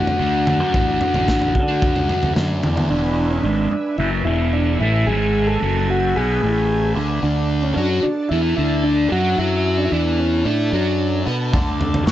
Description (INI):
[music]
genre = psychedelic rock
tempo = 111 BPM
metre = 4/4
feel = straight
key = E mixolydian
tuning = A4 = 440 Hz
[part]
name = combo organ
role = melody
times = 0.0-11.2 s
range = C#4 to A4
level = -22 LUFS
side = right 1 dB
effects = slapback echo
[part]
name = ensemble organ-string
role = sustained chords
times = 0.0-12.1 s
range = A3 to A5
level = -33 LUFS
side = right 2 dB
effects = ensemble chorus
[part]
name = fuzz guitar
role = riff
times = 0.0-12.1 s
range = E2 to B4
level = -21 LUFS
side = left 1 dB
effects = distortion, phaser
[part]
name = fuzz fingered electric bass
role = bass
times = 0.0-12.1 s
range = E1 to D3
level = -22 LUFS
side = equal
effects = overdrive
[part]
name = crunchy breakbeat drum kit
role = drums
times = 0.1-2.9, 11.5-12.1 s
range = kick drum, snare drum, toms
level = -21 LUFS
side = equal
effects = none
[sound]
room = moderate spring reverb, RT60 1.8 s, small room ambience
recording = nothing above 7.9 kHz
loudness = -16 LUFS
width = side -12 dB against mid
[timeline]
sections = 0.0-2.9 A section; 2.9-12.1 B section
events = none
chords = 0.0 D; 2.9 E; 7.2 D5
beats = 0.20 | 0.74 1.28 1.83 2.37 | 2.91 3.45 3.99 4.53 | 5.07 5.61 6.15 6.69 | 7.23 7.77 8.31 8.85 | 9.39 9.93 10.46 11.00 | 11.54 12.07